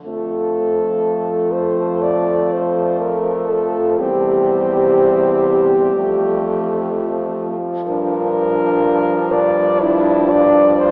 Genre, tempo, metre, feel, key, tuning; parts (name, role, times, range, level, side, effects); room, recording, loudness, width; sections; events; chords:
classical, lyrical piece for horn quartet; 61 BPM; 4/4; rubato; F major; A4 = 440 Hz
mellow French horn; melody; 0.1-10.9 s; E4 to D5; -16 LUFS; equal
clear French horn; second line; 0.1-10.9 s; A3 to D4; -21 LUFS; equal
mellow French horn; accompaniment; 0.1-10.9 s; F3 to G3; -22 LUFS; equal
warm French horn; bass; 0.1-10.9 s; E2 to G2; -22 LUFS; equal
wet cathedral reverb, RT60 5.3 s; heard from further back in the room, AM radio sound; -14 LUFS; side -34 dB against mid
0.1-10.9 A section
0.1 F; 4.0 C/E; 6.0 F; 7.9 Gm7